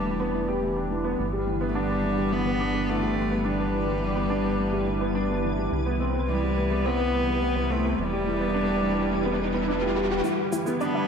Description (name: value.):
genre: piano and strings electronica.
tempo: 106 BPM.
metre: 4/4.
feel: straight.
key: G major.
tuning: A4 = 440 Hz.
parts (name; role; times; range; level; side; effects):
clear cello; melody; 0.0-11.1 s; G3 to B3; -29 LUFS; left 1 dB; diffuse ambient delay.
granular cloud pad; sustained chords; 0.1-11.1 s; C3 to B4; -31 LUFS; left 2 dB; built-in reverb, ensemble chorus.
warm grand piano; riff; 0.0-11.1 s; E3 to G4; -27 LUFS; right 1 dB; analog chorus, low-pass filter, diffuse ambient delay.
round analog bass; bass; 0.0-11.1 s; E1 to C2; -32 LUFS; equal; high-pass filter.
riser; sound effects; 8.2-10.2 s; none; -34 LUFS; right 1 dB; none.
soft round pluck; arpeggios; 10.2-11.0 s; E4 to E5; -32 LUFS; left 3 dB; chorus, cassette tape, diffuse ambient delay.
shaker; drums; 10.2-10.9 s; none; -42 LUFS; left 1 dB; overdrive.
room: wet plate reverb, RT60 1.9 s, digital ambience.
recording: dreamy mix soaked in reverb.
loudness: -23 LUFS.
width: side -6 dB against mid.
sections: 0.0-10.2 A section.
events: riser 8.2-10.2.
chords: 0.0 Em7; 1.2 G6; 5.7 Cmaj7; 8.0 Em7; 10.2 G6.